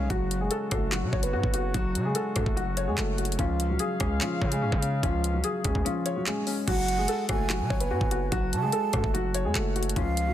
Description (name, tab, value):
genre	hip hop, drill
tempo	146 BPM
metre	4/4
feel	half-time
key	F# harmonic minor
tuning	A4 = 439 Hz
part	dark concert grand piano	melody	0.0-10.3 s	E#3 to B4	-30 LUFS	equal	tape echo
part	felt-muted upright piano	accompaniment	0.0-10.3 s	C#4 to C#5	-33 LUFS	left 5 dB	none
part	dark brass ensemble	sustained chords	0.0-6.6 s	C#3 to E#5	-37 LUFS	left 1 dB	none
part	distorted 808-style bass	bass	0.0-10.3 s	F#1 to C#3	-30 LUFS	equal	distortion
part	drill drum kit	drums	0.1-10.3 s	crash cymbal, handclaps, hi-hat, kick drum, rim click	-30 LUFS	equal	overdrive
part	breathy mellow concert flute	second line	6.7-10.3 s	E#5 to A5	-32 LUFS	right 5 dB	tape echo
room	little or no reverb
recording	dense, heavily limited modern master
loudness	-25 LUFS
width	side -11 dB against mid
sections	0.0-6.7 A section; 6.7-10.3 B section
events	kick muted 5.9-6.7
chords	0.1 F#madd9; 3.4 C#; 6.7 F#madd9